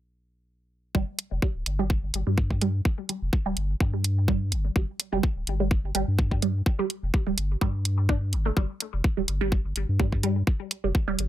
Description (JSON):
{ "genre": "minimal techno", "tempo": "126 BPM", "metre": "4/4", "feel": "swing 54% on 16ths", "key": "unclear", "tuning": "A4 = 441 Hz", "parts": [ { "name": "resonant blip pluck", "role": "riff", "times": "0.9-11.1 s", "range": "G3 to D4", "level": "-30 LUFS", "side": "right 3 dB", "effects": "phaser, sidechain pumping, ping-pong delay" }, { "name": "saturated sub bass", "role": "bass", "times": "0.9-11.3 s", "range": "D1 to G2", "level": "-27 LUFS", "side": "equal", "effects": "sidechain pumping" }, { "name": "electronic kick drum", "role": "drums", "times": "0.9-11.1 s", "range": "none", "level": "-24 LUFS", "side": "equal", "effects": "overdrive" }, { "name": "electronic hi-hat", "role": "drums", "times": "1.2-11.3 s", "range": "none", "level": "-28 LUFS", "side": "right 1 dB", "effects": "overdrive" } ], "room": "little or no reverb", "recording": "faint mains hum", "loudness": "-24 LUFS", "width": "side -13 dB against mid", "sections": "0.9-11.3 A section", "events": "none", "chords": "0.9 G5" }